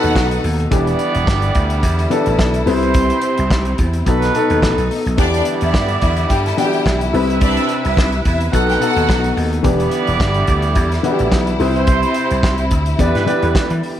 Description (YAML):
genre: disco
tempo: 108 BPM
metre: 4/4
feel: swing 56% on 16ths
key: E minor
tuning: A4 = 440 Hz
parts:
  - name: rich studio string section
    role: second line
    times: 0.0-0.4, 5.2-9.3 s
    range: D4 to A5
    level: -22 LUFS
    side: left 1 dB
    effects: none
  - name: dark baby grand piano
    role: accompaniment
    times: 0.0-14.0 s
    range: B2 to D5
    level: -20 LUFS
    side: left 3 dB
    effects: none
  - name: clear studio string section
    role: sustained chords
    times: 0.0-14.0 s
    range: B2 to B4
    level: -24 LUFS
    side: left 1 dB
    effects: none
  - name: warm horn section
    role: stabs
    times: 0.0-13.8 s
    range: F#3 to F#5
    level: -22 LUFS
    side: right 5 dB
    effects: none
  - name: vintage slap bass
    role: bass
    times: 0.0-13.8 s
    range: E1 to E3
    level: -19 LUFS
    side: equal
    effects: none
  - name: warm soul drum kit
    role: drums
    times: 0.0-14.0 s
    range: hi-hat, kick drum, snare drum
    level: -19 LUFS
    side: equal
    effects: none
room: moderate large studio reverb, RT60 1.2 s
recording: none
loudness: -14 LUFS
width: side -11 dB against mid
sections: 0.0-14.0 A section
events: none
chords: 0.0 B7; 0.7 Em7; 2.7 Cmaj7; 4.1 B7; 5.2 Em7; 7.1 Cmaj7; 8.5 B7; 9.6 Em7; 11.6 Cmaj7; 13.0 Em7